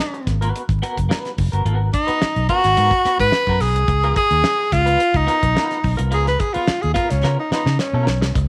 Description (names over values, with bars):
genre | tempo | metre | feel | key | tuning
funk | 108 BPM | 4/4 | straight | unclear | A4 = 440 Hz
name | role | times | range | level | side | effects
breathy tenor saxophone | melody | 0.0-8.3 s | C#4 to B4 | -20 LUFS | equal | slapback echo
clean electric guitar | accompaniment | 0.0-8.4 s | B3 to B4 | -30 LUFS | equal | tremolo
damped 70s drum kit | drums | 0.1-8.5 s | hi-hat, kick drum, snare drum | -26 LUFS | equal | none
vintage muted fingered electric bass | bass | 0.3-8.5 s | F#1 to C#3 | -22 LUFS | equal | none
room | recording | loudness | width
light reverb, small room ambience | vinyl crackle | -18 LUFS | mono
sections
0.0-8.4 A section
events
tenor saxophone solo 0.0-8.4; drum fill 7.2-8.4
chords
0.0 G#m9; 3.9 C#13